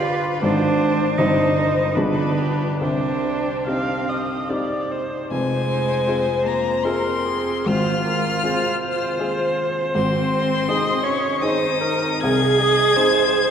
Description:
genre	classical, slow romantic movement for piano quartet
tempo	68-85 BPM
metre	3/4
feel	rubato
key	C minor, F minor from 5.3 s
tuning	A4 = 440 Hz
part	clear violin	melody	0.0-13.5 s	G4 to Ab6	-26 LUFS	left 6 dB	none
part	clear cello	second line	0.0-13.5 s	Ab3 to Ab4	-23 LUFS	right 4 dB	none
part	rich viola	accompaniment	0.0-13.5 s	Ab4 to F5	-24 LUFS	equal	none
part	warm baby grand piano	accompaniment	0.0-13.5 s	F1 to C5	-23 LUFS	left 1 dB	none
room	wet church reverb, RT60 3.0 s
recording	worn, warbling old tape, cassette tape, warbly pitch drift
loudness	-18 LUFS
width	side -8 dB against mid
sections	0.0-5.3 A section; 5.3-13.5 B section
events	none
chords	0.4 Ab; 1.2 Cm/G; 2.0 G7b9; 2.8 Cm; 5.3 Fm; 7.7 Fm/Ab; 9.9 Ab; 12.2 Ab/C

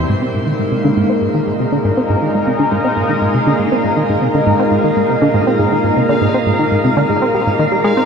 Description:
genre	ambient, sequencer-driven space music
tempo	120 BPM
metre	4/4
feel	straight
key	unclear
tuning	A4 = 436 Hz
part	sweeping resonant pad	sustained chords	0.0-8.1 s	Bb2 to Bb4	-15 LUFS	equal	chorus
part	tight sequenced synth	riff	0.0-8.0 s	Ab2 to C4	-16 LUFS	equal	chorus, ping-pong delay
part	bubbling stepped-filter texture	texture	0.5-8.1 s	F5	-24 LUFS	right 2 dB	chorus, built-in reverb
room	wet shimmer reverb, RT60 7.8 s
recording	none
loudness	-12 LUFS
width	side -6 dB against mid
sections	0.1-8.1 A section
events	filter sweep on synth arpeggio sound 0.1-8.1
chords	0.1 Absus2

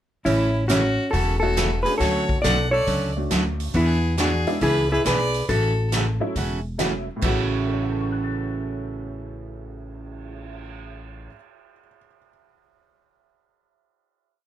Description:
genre	country, western swing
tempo	138 BPM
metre	4/4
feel	swing 67% on 8ths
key	A major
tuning	A4 = 441 Hz
part	hollow-body jazz guitar	melody	0.2-5.9 s	B3 to D5	-22 LUFS	left 1 dB	none
part	clear fiddle	second line	0.2-5.9 s	E4 to F#5	-29 LUFS	left 1 dB	none
part	picked steel-string acoustic guitar	accompaniment	0.3-11.3 s	A2 to G#4	-27 LUFS	right 2 dB	none
part	upright bass	bass	0.3-11.3 s	E1 to E2	-26 LUFS	equal	none
part	swinging big-band drum kit	drums	0.3-10.6 s	crash cymbal, cymbal swell, hi-hat, kick drum, snare drum	-29 LUFS	equal	none
part	honky-tonk upright piano	accompaniment	1.4-12.3 s	A2 to A6	-30 LUFS	equal	none
room	light reverb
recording	none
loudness	-20 LUFS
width	side -11 dB against mid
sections	0.3-7.2 A section; 7.2-10.7 final chord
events	none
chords	0.3 A6; 2.0 Dmaj7; 3.7 E7; 5.5 A6

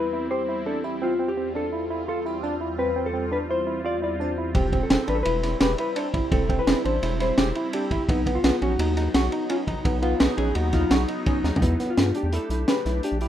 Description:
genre	progressive instrumental, band music in an uneven meter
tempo	170 BPM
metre	5/4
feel	straight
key	E phrygian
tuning	A4 = 440 Hz
part	hollow-body jazz guitar	melody	0.0-13.3 s	D#4 to D5	-28 LUFS	left 2 dB	none
part	barky tine electric piano	arpeggios	0.0-13.3 s	B3 to G4	-29 LUFS	right 3 dB	none
part	round analog bass	bass	4.5-13.3 s	E1 to G2	-26 LUFS	equal	none
part	crunchy breakbeat drum kit	drums	4.5-13.3 s	hi-hat, kick drum, ride cymbal, snare drum, toms	-24 LUFS	equal	none
part	mellow electric guitar	second line	10.0-11.6 s	D#4 to G#4	-29 LUFS	left 4 dB	none
room	moderate small room reverb, RT60 0.6 s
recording	rough home demo mix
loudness	-21 LUFS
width	side -11 dB against mid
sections	0.0-11.6 A section; 11.6-13.3 B section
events	drum fill 11.4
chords	0.0 C/E; 1.0 Dm7/E; 4.5 C/E; 8.1 B; 11.6 Em

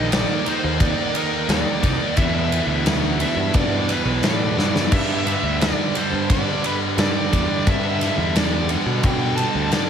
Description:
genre	quiet-loud alternative rock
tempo	87 BPM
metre	4/4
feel	straight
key	G major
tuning	A4 = 440 Hz
part	bluesy overdriven lead guitar	melody	0.0-9.9 s	Bb4 to A5	-26 LUFS	equal	distortion
part	cranked stack guitar	riff	0.0-9.9 s	E2 to Eb4	-26 LUFS	right 9 dB	overdrive, slapback echo
part	scooped high-gain guitar	riff	0.0-9.9 s	E2 to Eb4	-26 LUFS	left 10 dB	distortion
part	fuzz picked electric bass	bass	0.0-9.7 s	Bb1 to B2	-24 LUFS	equal	overdrive
part	big rock drum kit	drums	0.1-9.9 s	crash cymbal, kick drum, ride cymbal, snare drum	-22 LUFS	equal	none
room	moderate lush hall reverb, RT60 2.3 s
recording	big arena sound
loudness	-18 LUFS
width	side -8 dB against mid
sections	0.0-9.9 A section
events	drum fill 4.6-4.9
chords	0.0 Eb5; 2.2 Em; 4.9 G5

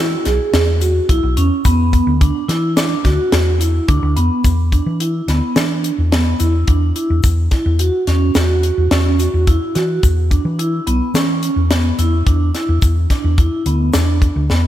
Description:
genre	progressive instrumental, band music in an uneven meter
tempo	107 BPM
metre	5/4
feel	straight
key	E mixolydian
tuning	A4 = 439 Hz
part	vibraphone with soft mallets	arpeggios	0.0-14.7 s	B3 to G#4	-19 LUFS	right 2 dB	slapback echo
part	hollow-body short-scale fingered electric bass	bass	0.0-14.7 s	B1 to E3	-16 LUFS	equal	none
part	tight funk drum kit	drums	0.3-14.6 s	hi-hat, kick drum, snare drum	-17 LUFS	left 1 dB	none
part	egg shaker	percussion	0.8-14.6 s	none	-35 LUFS	left 7 dB	none
room	light reverb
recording	none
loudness	-13 LUFS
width	side -12 dB against mid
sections	0.0-4.4 A section; 4.4-14.7 B section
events	drum fill 14.5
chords	0.0 C#m7; 1.7 E5; 7.2 F#5/E; 10.0 C#m7; 12.8 E5

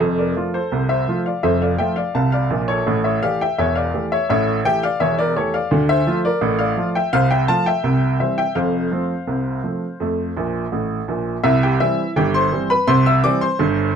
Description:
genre	ragtime piano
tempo	84 BPM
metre	2/4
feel	straight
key	F major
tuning	A4 = 440 Hz
part	clear upright piano	solo	0.0-13.9 s	E1 to E6	-16 LUFS	equal	none
room	light reverb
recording	close, detailed microphones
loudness	-17 LUFS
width	side -7 dB against mid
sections	0.0-11.5 A section; 11.5-14.0 B section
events	upright piano fill 10.4-11.5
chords	0.0 F; 2.9 A7; 5.7 Dm; 7.1 F/C; 7.8 C; 8.6 F; 11.5 C

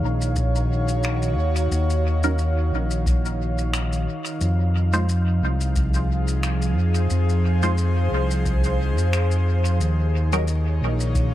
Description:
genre	ambient dub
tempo	89 BPM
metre	4/4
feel	swing 55% on 16ths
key	Eb dorian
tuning	A4 = 444 Hz
part	airy breathy pad	sustained chords	0.0-11.3 s	Eb3 to F5	-27 LUFS	equal	chorus
part	overdriven fingered electric bass	bass	0.0-11.3 s	Bb1 to F2	-21 LUFS	equal	none
part	shaker and finger snaps	drums	0.2-11.3 s	none	-33 LUFS	left 2 dB	dub echo
part	electronic kick drum	drums	0.4-11.3 s	none	-24 LUFS	equal	none
part	filtered dub chord stab	stabs	2.2-10.4 s	Gb3 to C5	-29 LUFS	right 1 dB	phaser, dub echo
room	studio reverb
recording	none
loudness	-19 LUFS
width	side -13 dB against mid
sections	0.0-11.3 A section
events	none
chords	0.0 Ebm7; 4.4 Fm7; 9.8 Ebm7

